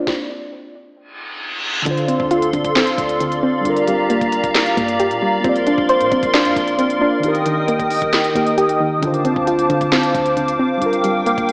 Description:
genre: hip hop, trap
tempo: 134 BPM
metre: 4/4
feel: half-time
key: D phrygian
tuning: A4 = 439 Hz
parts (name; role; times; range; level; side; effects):
- muted felt-like synth keys; accompaniment; 0.0-11.5 s; D3 to D5; -24 LUFS; equal; chorus, low-pass filter
- soft round pluck; arpeggios; 0.0-11.5 s; D3 to C5; -22 LUFS; equal; chorus, low-pass filter, analog delay
- trap drum kit; drums; 0.1-11.5 s; handclaps, hi-hat, kick drum, snare drum; -24 LUFS; equal; none
- reverse cymbal; sound effects; 1.2-1.9 s; none; -26 LUFS; equal; none
- hollow soft pad; sustained chords; 1.9-11.5 s; G4 to Eb6; -21 LUFS; equal; ensemble chorus
- clean 808-style bass; bass; 1.9-11.5 s; D1 to Bb2; -38 LUFS; equal; none
room: wet lush hall reverb, RT60 1.7 s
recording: dreamy mix soaked in reverb, AM radio sound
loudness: -17 LUFS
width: mono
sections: 0.0-1.9 A section; 1.9-11.5 B section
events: stop 0.1-1.9; reverse cymbal 1.2-1.9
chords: 0.1 N.C.; 1.9 Dm7; 3.7 Gm7; 5.4 Bbadd9; 7.2 Eb; 9.0 Dm7; 10.8 Gm7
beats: | 0.07 0.52 0.97 1.42 | 1.86 2.31 2.76 3.21 | 3.65 4.10 4.55 5.00 | 5.44 5.89 6.34 6.79 | 7.24 7.68 8.13 8.58 | 9.03 9.47 9.92 10.37 | 10.82 11.27

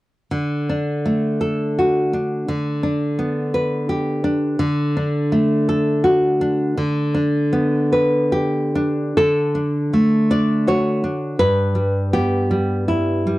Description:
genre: romantic piece for solo classical guitar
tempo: 67-86 BPM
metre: 3/4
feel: rubato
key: D major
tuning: A4 = 440 Hz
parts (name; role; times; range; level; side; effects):
- nylon-string guitar; solo; 0.3-13.4 s; G2 to D5; -17 LUFS; equal; none
room: light reverb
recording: dry, close 1970s-style studio recording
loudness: -17 LUFS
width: side -18 dB against mid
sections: 0.3-9.2 A section; 9.2-13.4 B section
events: none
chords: 0.3 D; 2.5 G/D; 4.6 D; 6.8 G/D; 9.2 D; 11.4 Em/G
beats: | 0.32 1.06 1.78 | 2.48 3.19 3.90 | 4.60 5.32 6.04 | 6.78 7.53 8.32 | 9.17 9.93 10.67 | 11.39 12.13 12.88

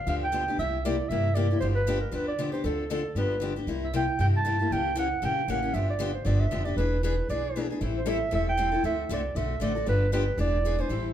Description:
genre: acoustic string swing (jazz manouche)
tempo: 233 BPM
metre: 4/4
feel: swing 57% on 8ths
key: G mixolydian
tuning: A4 = 440 Hz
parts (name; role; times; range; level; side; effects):
- mellow clarinet; melody; 0.0-11.1 s; A4 to A5; -29 LUFS; right 3 dB; plate reverb
- picked steel-string acoustic guitar; accompaniment; 0.1-11.1 s; C3 to A4; -30 LUFS; left 3 dB; none
- upright bass; bass; 0.1-11.1 s; E1 to G2; -29 LUFS; equal; none
room: wet club reverb, RT60 0.8 s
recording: heard from further back in the room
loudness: -25 LUFS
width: side -10 dB against mid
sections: 0.0-11.1 A section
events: none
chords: 0.0 G7; 0.6 C7; 1.6 G7; 2.6 Dm7; 3.2 G7; 3.7 C7; 4.7 C#dim7; 5.7 G7; 6.8 E7; 7.8 Am7; 8.8 D7; 9.9 G7; 10.4 E7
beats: 0.06 0.32 | 0.58 0.84 1.10 1.35 | 1.61 1.87 2.13 2.39 | 2.65 2.90 3.16 3.42 | 3.68 3.94 4.19 4.45 | 4.71 4.97 5.22 5.48 | 5.74 6.00 6.26 6.51 | 6.77 7.03 7.29 7.55 | 7.80 8.06 8.32 8.58 | 8.84 9.09 9.35 9.61 | 9.87 10.12 10.38 10.64 | 10.90

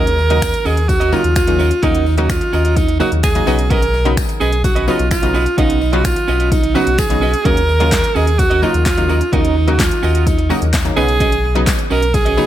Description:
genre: dance-pop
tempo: 128 BPM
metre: 4/4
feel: straight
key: Eb minor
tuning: A4 = 444 Hz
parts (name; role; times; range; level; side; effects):
- edgy alto saxophone; melody; 0.0-12.5 s; D#4 to Bb4; -17 LUFS; right 3 dB; dub echo
- analog pluck; accompaniment; 0.0-12.5 s; Db3 to F4; -21 LUFS; left 2 dB; chorus, sidechain pumping
- clean electric guitar; riff; 0.0-12.5 s; Db4 to Eb5; -24 LUFS; right 5 dB; lush chorus, dub echo
- sub bass with octave; bass; 0.0-12.4 s; B1 to Eb2; -17 LUFS; left 1 dB; sidechain pumping
- deep house drum kit; drums; 0.1-12.4 s; finger snaps, handclaps, hi-hat, kick drum, snare drum; -18 LUFS; left 1 dB; none
- tambourine; percussion; 0.2-12.5 s; none; -34 LUFS; left 10 dB; none
room: light reverb, digital ambience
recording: echo-heavy mix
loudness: -12 LUFS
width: side -12 dB against mid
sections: 0.0-12.5 A section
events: none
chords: 0.0 Ebm7; 3.5 Badd9; 7.5 Ebm7; 11.0 Badd9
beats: 0.42 0.89 1.36 | 1.83 2.30 2.77 3.23 | 3.70 4.17 4.64 5.11 | 5.58 6.05 6.52 6.99 | 7.45 7.92 8.39 8.86 | 9.33 9.80 10.27 10.73 | 11.20 11.67 12.14

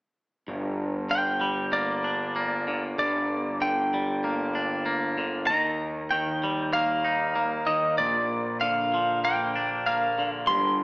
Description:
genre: rock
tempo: 96 BPM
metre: 4/4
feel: straight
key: G minor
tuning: A4 = 440 Hz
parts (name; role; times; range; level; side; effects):
- twangy electric guitar; arpeggios; 0.5-10.8 s; G2 to Eb4; -28 LUFS; equal; none
- fuzz picked electric bass; bass; 0.5-10.8 s; G1 to Eb2; -32 LUFS; equal; overdrive
- lightly driven lead guitar; melody; 1.1-10.8 s; D5 to C6; -26 LUFS; equal; none
room: wet large studio reverb, RT60 1.2 s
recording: band playing live in one room, small speaker sound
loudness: -24 LUFS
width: side -35 dB against mid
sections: 0.5-10.8 A section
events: none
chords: 0.5 Gm; 5.5 Eb; 8.0 Bb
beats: | 0.48 1.11 1.73 2.36 | 2.99 3.61 4.24 4.87 | 5.49 6.12 6.74 7.37 | 7.99 8.62 9.24 9.86 | 10.49

